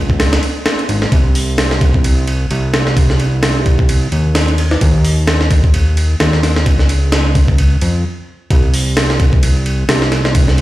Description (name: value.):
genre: breakbeat, breaks.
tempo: 130 BPM.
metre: 4/4.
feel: swing 57% on 16ths.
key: unclear.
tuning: A4 = 440 Hz.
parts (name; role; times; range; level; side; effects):
fat analog bass; bass; 0.0-10.6 s; Ab1 to F2; -14 LUFS; equal; none.
breakbeat sampler-style drum kit; drums; 0.1-10.6 s; hi-hat, kick drum, ride cymbal, snare drum; -14 LUFS; equal; none.
room: little or no reverb.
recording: played on a big sound system in a bare room, stone room reverb.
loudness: -11 LUFS.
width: side -16 dB against mid.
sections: 0.0-8.5 A section; 8.5-10.6 B section.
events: stop 8.0-8.5; drop 8.5-10.6.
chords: none.